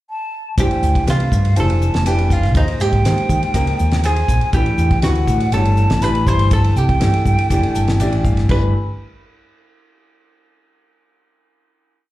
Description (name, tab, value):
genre	electric jazz fusion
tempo	121 BPM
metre	4/4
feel	straight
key	G mixolydian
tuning	A4 = 440 Hz
part	hollow concert flute	melody	0.1-8.7 s	Eb5 to C6	-22 LUFS	right 2 dB	slapback echo, analog delay
part	archtop guitar, miked and amplified	second line	0.6-8.7 s	Eb4 to C5	-26 LUFS	right 3 dB	slapback echo
part	clear grand piano	accompaniment	0.6-8.7 s	E3 to A5	-23 LUFS	left 2 dB	slapback echo
part	woody fretless electric bass	bass	0.6-8.7 s	F1 to Eb3	-16 LUFS	equal	none
part	damped 70s drum kit	drums	0.6-8.6 s	crash cymbal, hi-hat, kick drum, ride cymbal, snare drum	-20 LUFS	equal	none
room	little or no reverb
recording	live gig heard through the venue's PA, club reverb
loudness	-14 LUFS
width	side -16 dB against mid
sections	0.0-0.6 pickup bar; 0.6-8.5 A section; 8.5-10.5 final chord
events	grand piano fill 7.5-8.5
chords	0.0 N.C.; 0.6 G9sus4; 2.6 Ebsus4; 4.5 A9sus4; 6.3 G9sus4; 8.5 G